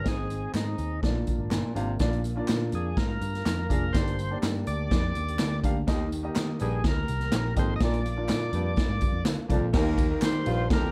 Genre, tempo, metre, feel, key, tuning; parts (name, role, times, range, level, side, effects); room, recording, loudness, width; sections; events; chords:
uptempo 1960s-style soul; 124 BPM; 4/4; straight; Eb major; A4 = 439 Hz
overdriven tonewheel organ; melody; 0.0-10.9 s; Eb4 to Eb5; -37 LUFS; equal; slow rotary speaker, tube saturation
warm concert grand piano; accompaniment; 0.0-10.5 s; G2 to F5; -35 LUFS; equal
tonewheel organ; sustained chords; 0.0-10.9 s; D3 to Bb4; -44 LUFS; equal
mellow baritone saxophone; riff; 0.1-1.9, 5.9-10.9 s; Eb2 to C3; -36 LUFS; equal
vintage muted picked electric bass; bass; 0.1-10.9 s; F1 to Eb3; -33 LUFS; equal
swinging big-band drum kit; drums; 0.1-10.8 s; crash cymbal, hi-hat, kick drum, ride cymbal, snare drum; -30 LUFS; equal
tambourine and handclaps; percussion; 0.1-10.8 s; -45 LUFS; equal
bright horn section; second line; 9.7-10.9 s; F3 to Bb4; -36 LUFS; equal
light reverb; dark, warm production; -27 LUFS; mono
0.0-2.0 A section; 2.0-9.7 B section; 9.7-10.9 C section
0.1 Ab; 1.0 Bb; 3.9 Gm; 5.9 Eb; 7.8 Bb; 9.7 Eb